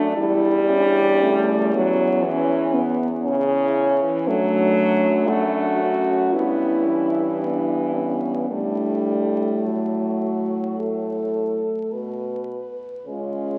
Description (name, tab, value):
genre	classical, lyrical piece for horn quartet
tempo	52-60 BPM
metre	4/4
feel	rubato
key	D major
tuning	A4 = 441 Hz
part	mellow French horn	melody	0.0-13.6 s	B3 to B4	-30 LUFS	equal	none
part	mellow French horn	second line	0.0-13.6 s	A3 to F#4	-26 LUFS	equal	none
part	mellow French horn	accompaniment	0.0-13.6 s	C#3 to B3	-25 LUFS	equal	none
part	mellow French horn	bass	0.0-13.6 s	E2 to C#3	-30 LUFS	equal	none
room	wet scoring stage reverb, RT60 1.9 s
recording	very old 78 rpm record, vinyl crackle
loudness	-21 LUFS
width	mono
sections	0.0-13.6 A section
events	none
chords	0.2 C#dim/E; 4.3 D/F#; 6.3 Em/G; 8.5 D/A; 10.8 F#madd11/A; 13.1 C#